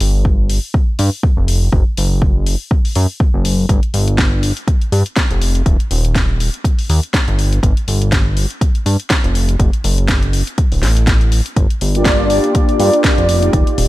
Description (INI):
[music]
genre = nu-disco, nu disco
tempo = 122 BPM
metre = 4/4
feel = swing 56% on 16ths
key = G minor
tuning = A4 = 444 Hz
[part]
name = chorused synth bass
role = bass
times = 0.0-13.9 s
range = D1 to G2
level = -14 LUFS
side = equal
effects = none
[part]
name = house drum kit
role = drums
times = 0.0-13.9 s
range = hi-hat, snare drum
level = -21 LUFS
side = left 1 dB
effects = overdrive
[part]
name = electronic kick drum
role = drums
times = 0.2-13.6 s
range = none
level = -14 LUFS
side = equal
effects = overdrive
[part]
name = mellow synth brass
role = accompaniment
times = 11.9-13.9 s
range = Bb3 to D5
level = -14 LUFS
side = equal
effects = chorus, sidechain pumping, tape echo
[sound]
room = digital ambience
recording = none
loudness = -12 LUFS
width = side -17 dB against mid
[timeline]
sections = 0.0-13.9 A section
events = none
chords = 0.0 Fsus2; 1.7 N.C.; 3.7 Fsus2; 5.7 Eb; 7.4 Fsus2; 9.6 D/F#; 11.6 Gm7